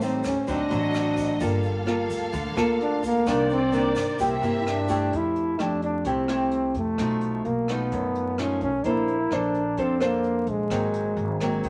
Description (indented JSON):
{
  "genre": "bossa nova",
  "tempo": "129 BPM",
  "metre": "4/4",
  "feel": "straight",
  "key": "unclear",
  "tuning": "A4 = 440 Hz",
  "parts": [
    { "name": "mellow trombone", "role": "melody", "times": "0.0-11.7 s", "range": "Ab3 to E4", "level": "-28 LUFS", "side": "equal", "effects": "none" },
    { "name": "nylon-string guitar", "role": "accompaniment", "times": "0.0-11.7 s", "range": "F#2 to C5", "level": "-29 LUFS", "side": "equal", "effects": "none" },
    { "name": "warm symphonic string section", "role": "sustained chords", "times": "0.0-5.1 s", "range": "A3 to F5", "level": "-35 LUFS", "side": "equal", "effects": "none" },
    { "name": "upright bass", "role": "bass", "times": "0.0-11.7 s", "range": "G1 to G2", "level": "-34 LUFS", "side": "equal", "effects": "none" },
    { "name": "jazz brush drum kit", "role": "drums", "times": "0.0-11.7 s", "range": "hi-hat, kick drum, rim click", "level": "-42 LUFS", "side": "equal", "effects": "none" },
    { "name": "egg shaker", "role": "percussion", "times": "0.0-5.1 s", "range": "none", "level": "-50 LUFS", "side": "equal", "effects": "none" }
  ],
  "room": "moderate studio reverb, RT60 0.9 s",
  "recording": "vinyl crackle",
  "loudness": "-25 LUFS",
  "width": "mono",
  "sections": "0.0-5.1 A section; 5.1-11.7 B section",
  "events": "trombone solo 0.0-5.1",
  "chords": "0.5 D7b9; 1.4 Gm9; 3.3 Cm9; 4.2 C7; 5.1 Fmaj9; 7.0 B7#11; 8.8 Bbmaj9; 10.7 Ab9"
}